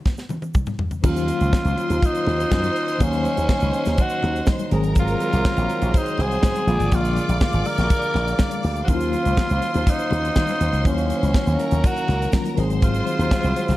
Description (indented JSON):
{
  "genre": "disco",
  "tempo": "122 BPM",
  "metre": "4/4",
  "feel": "straight",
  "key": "Eb dorian",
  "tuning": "A4 = 440 Hz",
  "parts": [
    { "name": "tight funk drum kit", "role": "drums", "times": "0.1-13.8 s", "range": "crash cymbal, hi-hat, kick drum, snare drum, toms", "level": "-21 LUFS", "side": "equal", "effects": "none" },
    { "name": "congas", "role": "percussion", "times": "0.1-13.8 s", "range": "none", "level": "-33 LUFS", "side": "left 5 dB", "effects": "none" },
    { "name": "egg shaker", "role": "percussion", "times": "0.1-13.8 s", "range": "none", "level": "-47 LUFS", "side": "right 8 dB", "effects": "none" },
    { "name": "clear studio string section", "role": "second line", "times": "1.0-13.8 s", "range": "Bb4 to D6", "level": "-30 LUFS", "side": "equal", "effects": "none" },
    { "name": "tine electric piano", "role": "accompaniment", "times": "1.0-13.8 s", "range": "D3 to F5", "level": "-27 LUFS", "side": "left 2 dB", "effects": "overdrive, fast stereo tremolo" },
    { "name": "dark French horn section", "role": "sustained chords", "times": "1.0-13.8 s", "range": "D3 to F5", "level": "-31 LUFS", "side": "right 1 dB", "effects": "none" },
    { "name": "slap bass with an envelope filter", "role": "bass", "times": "1.0-13.8 s", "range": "Ab1 to Eb3", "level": "-22 LUFS", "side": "equal", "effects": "none" },
    { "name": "growling tenor saxophone", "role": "melody", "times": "1.1-13.8 s", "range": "Db4 to Bb4", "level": "-25 LUFS", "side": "equal", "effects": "tape echo" }
  ],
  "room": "light reverb, small room ambience",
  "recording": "dark, warm production",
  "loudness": "-18 LUFS",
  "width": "side -16 dB against mid",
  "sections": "0.0-1.0 A section; 1.0-13.8 B section",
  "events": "drum fill 0.1-1.0",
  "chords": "0.0 N.C.; 1.0 Ebm9; 4.7 Ab7; 6.7 Bb7; 8.9 Ebm9; 12.6 Ab7"
}